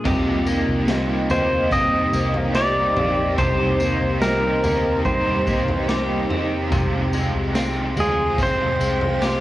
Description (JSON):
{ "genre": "dream pop", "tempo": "72 BPM", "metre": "4/4", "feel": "straight", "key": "C minor", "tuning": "A4 = 440 Hz", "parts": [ { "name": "overdriven electric guitar", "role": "accompaniment", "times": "0.0-9.4 s", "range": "C3 to G4", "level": "-25 LUFS", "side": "right 2 dB", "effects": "tremolo, analog chorus" }, { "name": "granular cloud pad", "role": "sustained chords", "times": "0.0-9.4 s", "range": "Ab3 to C6", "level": "-30 LUFS", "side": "equal", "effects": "built-in reverb" }, { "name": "electric guitar at the edge of break-up", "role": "arpeggios", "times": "0.0-9.4 s", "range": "C3 to G4", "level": "-26 LUFS", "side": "left 2 dB", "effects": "wide subtle chorus, analog delay" }, { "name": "handpan", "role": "texture", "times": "0.0-2.9 s", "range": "C4 to F4", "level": "-31 LUFS", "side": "right 1 dB", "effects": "none" }, { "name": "vintage muted fingered electric bass", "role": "bass", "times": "0.1-9.4 s", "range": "Bb1 to D2", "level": "-27 LUFS", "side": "equal", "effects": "none" }, { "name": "raw garage drum kit", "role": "drums", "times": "0.1-9.4 s", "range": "crash cymbal, kick drum, snare drum, tambourine, toms", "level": "-26 LUFS", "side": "equal", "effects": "cassette tape" }, { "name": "pedal steel guitar", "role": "melody", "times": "1.3-9.4 s", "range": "Ab4 to Eb5", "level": "-21 LUFS", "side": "equal", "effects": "analog delay" } ], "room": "wet small room ambience, RT60 0.5 s", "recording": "home recording on cassette", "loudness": "-18 LUFS", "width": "side -15 dB against mid", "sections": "0.1-9.4 A section", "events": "none", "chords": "0.1 Cm7; 6.7 Fmadd9/C" }